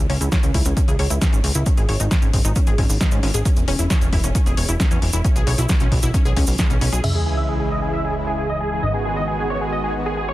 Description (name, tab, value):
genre	uplifting trance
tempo	134 BPM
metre	4/4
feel	straight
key	C# minor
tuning	A4 = 440 Hz
part	plucky analog bass	bass	0.0-10.3 s	E1 to G#2	-22 LUFS	equal	sidechain pumping
part	wide unison pluck	arpeggios	0.1-7.0 s	G#3 to C#5	-28 LUFS	left 1 dB	phaser, sidechain pumping, digital delay
part	punchy analog drum machine	drums	0.1-7.1 s	crash cymbal, hi-hat, snare drum	-27 LUFS	left 1 dB	sidechain pumping on hats, sidechain pumping on cymbals
part	cabasa	percussion	0.2-7.0 s	none	-30 LUFS	right 3 dB	none
part	electronic kick drum	drums	0.3-6.7 s	none	-18 LUFS	equal	none
part	dense compressed supersaw	melody	7.0-10.3 s	G#4 to E5	-24 LUFS	right 1 dB	sidechain pumping, low-pass filter, digital delay
part	clear concert grand piano	second line	7.0-10.3 s	G#5 to E6	-31 LUFS	left 2 dB	sidechain pumping, low-pass filter, digital delay
part	lush unison pad	sustained chords	7.0-10.1 s	C#3 to F#4	-24 LUFS	equal	chorus, sidechain pumping
part	sub drop	sound effects	7.0-8.8 s	none	-25 LUFS	equal	none
room	digital ambience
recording	dense, heavily limited modern master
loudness	-17 LUFS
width	side -16 dB against mid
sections	0.0-7.0 A section; 7.0-10.3 B section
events	filter sweep on synth pluck 0.0-7.0; impact 7.0-8.8; filter sweep on supersaw synth 7.0-10.3; filter sweep on grand piano 7.0-10.3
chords	0.0 C#m; 1.7 G#5; 3.5 N.C.; 7.0 C#m; 8.8 G#m7